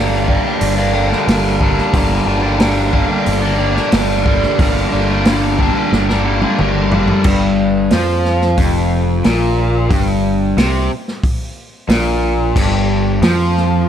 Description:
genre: psychedelic rock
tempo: 90 BPM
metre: 4/4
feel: straight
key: G minor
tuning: A4 = 437 Hz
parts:
  - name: overdriven semi-hollow guitar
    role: riff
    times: 0.0-13.9 s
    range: F2 to D4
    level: -15 LUFS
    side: equal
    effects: flanger
  - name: overdriven picked electric bass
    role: bass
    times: 0.0-13.8 s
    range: F1 to F2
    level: -18 LUFS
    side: equal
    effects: none
  - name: vintage drum kit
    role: drums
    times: 0.3-13.7 s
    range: crash cymbal, hi-hat, kick drum, snare drum, toms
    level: -18 LUFS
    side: equal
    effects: none
room: light reverb, studio reverb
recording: none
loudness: -12 LUFS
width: side -9 dB against mid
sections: 0.0-7.3 A section; 7.3-13.9 B section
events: drum fill 5.9-7.3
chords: 0.0 Gm

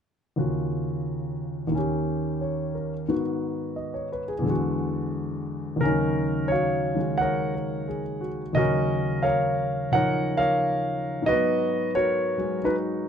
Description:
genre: solo jazz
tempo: 88 BPM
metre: 4/4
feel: swing 66% on 8ths, rubato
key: Eb minor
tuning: A4 = 440 Hz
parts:
  - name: warm grand piano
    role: solo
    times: 0.4-13.1 s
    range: Eb2 to Gb5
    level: -23 LUFS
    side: equal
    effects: none
room: moderate studio reverb, RT60 0.8 s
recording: none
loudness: -23 LUFS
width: side -8 dB against mid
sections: 0.4-5.8 A section; 5.8-13.1 B section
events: none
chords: 0.4 Ebm9; 1.7 Eb7; 3.1 Abm7; 4.4 E9; 5.8 Ebm9; 11.3 Abm9

